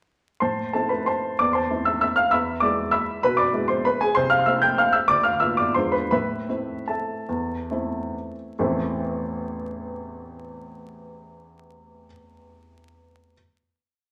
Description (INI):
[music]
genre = classical, piano waltz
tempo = 128-212 BPM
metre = 3/4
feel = rubato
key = A minor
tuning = A4 = 441 Hz
[part]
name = warm baby grand piano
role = solo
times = 0.4-13.3 s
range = A1 to G6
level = -24 LUFS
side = equal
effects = none
[sound]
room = wet large studio reverb, RT60 1.3 s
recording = vinyl crackle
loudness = -23 LUFS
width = mono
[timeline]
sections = 0.4-8.6 A section; 8.6-11.1 final chord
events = slowing down 5.6-8.6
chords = 0.4 Am; 2.3 E; 4.2 Am/C; 5.1 Bdim/D; 5.8 E7b9; 6.1 Am